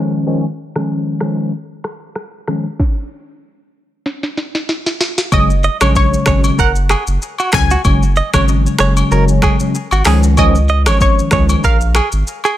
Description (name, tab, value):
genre	afrobeats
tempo	95 BPM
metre	4/4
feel	swing 55% on 16ths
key	F# major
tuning	A4 = 440 Hz
part	tine electric piano	accompaniment	0.0-11.6 s	C#3 to C#4	-17 LUFS	left 1 dB	ensemble chorus
part	afro-pop drum kit	drums	0.8-12.6 s	finger snaps, handclaps, hi-hat, kick drum, rim click, shaker, snare drum	-17 LUFS	equal	none
part	analog pluck	melody	5.3-12.5 s	C#5 to G#5	-20 LUFS	equal	chorus
part	saturated sub bass	bass	5.3-12.2 s	F#1 to C#2	-14 LUFS	equal	none
part	agogo bells	percussion	5.3-12.6 s	none	-22 LUFS	left 7 dB	none
part	direct-recorded clean electric guitar	riff	5.6-12.5 s	F#4 to D#5	-19 LUFS	right 4 dB	tremolo, ping-pong delay
room	little or no reverb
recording	low-pass filter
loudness	-12 LUFS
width	side -13 dB against mid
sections	0.0-5.3 A section; 5.3-12.6 B section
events	filter sweep 0.0-5.3; drum fill 4.1-5.3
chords	0.0 C#add9; 5.3 F#sus2; 10.1 C#add9